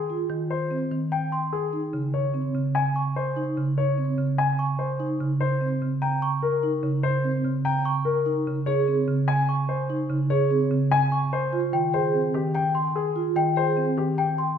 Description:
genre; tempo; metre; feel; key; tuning
classical, minimalist pattern music; 147 BPM; 4/4; straight; Ab major; A4 = 439 Hz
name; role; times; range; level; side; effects
warm grand piano; melody; 0.0-14.4 s; G4 to Ab5; -28 LUFS; left 5 dB; none
vibraphone with soft mallets; arpeggios; 0.1-14.0 s; C4 to Ab4; -28 LUFS; right 3 dB; none
marimba with soft mallets; accompaniment; 0.3-14.2 s; Db3 to Eb3; -26 LUFS; right 2 dB; none
celesta; arpeggios; 1.1-14.6 s; G5 to Db6; -28 LUFS; left 3 dB; none
room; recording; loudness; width
wet recital hall reverb, RT60 1.7 s; none; -22 LUFS; side -8 dB against mid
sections
0.0-14.6 A section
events
none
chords
0.0 Abmaj7; 1.7 Db5; 5.0 Eb7(no3); 8.3 Db5; 11.5 Abmaj7

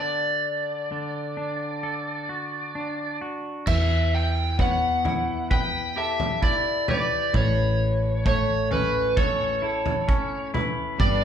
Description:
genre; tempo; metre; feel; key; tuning
post-rock; 65 BPM; 4/4; straight; unclear; A4 = 440 Hz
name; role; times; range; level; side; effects
overdriven slide guitar; melody; 0.0-11.2 s; B4 to G5; -26 LUFS; equal; none
twangy electric guitar; arpeggios; 0.0-11.2 s; A2 to B4; -30 LUFS; equal; none
electric guitar through a small old amp; arpeggios; 3.7-11.2 s; A4 to E5; -33 LUFS; right 4 dB; none
hollow-body short-scale picked electric bass; bass; 3.7-11.2 s; G1 to E2; -26 LUFS; equal; none
loose indie drum kit; drums; 3.7-11.2 s; crash cymbal, kick drum, toms; -26 LUFS; equal; none
bright studio string section; sustained chords; 11.0-11.2 s; G3 to B4; -30 LUFS; equal; none
room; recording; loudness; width
moderate large studio reverb, RT60 1.3 s; band playing live in one room; -22 LUFS; side -8 dB against mid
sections
0.0-3.7 A section; 3.7-11.2 A section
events
none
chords
0.0 D; 3.7 Em; 7.3 A

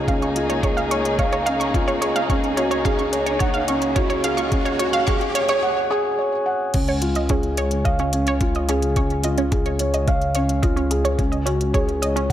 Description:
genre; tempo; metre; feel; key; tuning
piano and strings electronica; 108 BPM; 4/4; straight; Db major; A4 = 439 Hz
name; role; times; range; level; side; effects
dark chamber string section; sustained chords; 0.0-5.6 s; Db2 to Ab4; -26 LUFS; left 1 dB; sidechain pumping, low-pass filter
felt-muted upright piano; riff; 0.0-12.3 s; Db4 to Gb5; -22 LUFS; equal; digital delay
riser; sound effects; 1.1-5.6 s; none; -32 LUFS; equal; none
wide unison pluck; arpeggios; 0.1-12.2 s; Db4 to Db6; -25 LUFS; right 2 dB; sidechain pumping, digital delay
electronic kick drum; drums; 0.1-12.3 s; none; -22 LUFS; equal; none
organic electronic drum kit; drums; 0.1-12.3 s; crash cymbal, hi-hat; -31 LUFS; left 2 dB; overdrive, high-pass filter on hats, high-pass filter on cymbals
dark detuned saw bass; bass; 6.7-12.3 s; Db2; -23 LUFS; equal; sidechain pumping
room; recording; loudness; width
moderate echo chamber reverb, RT60 2.3 s; none; -18 LUFS; side -11 dB against mid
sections
0.0-6.7 A section; 6.7-12.3 B section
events
build-up 0.0-6.7; filter sweep on string section 0.0-6.7; riser 1.1-5.6; drop 6.7-12.3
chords
0.0 Db; 2.3 Gbsus2/Db; 6.7 Db; 11.2 Gbsus2/Db

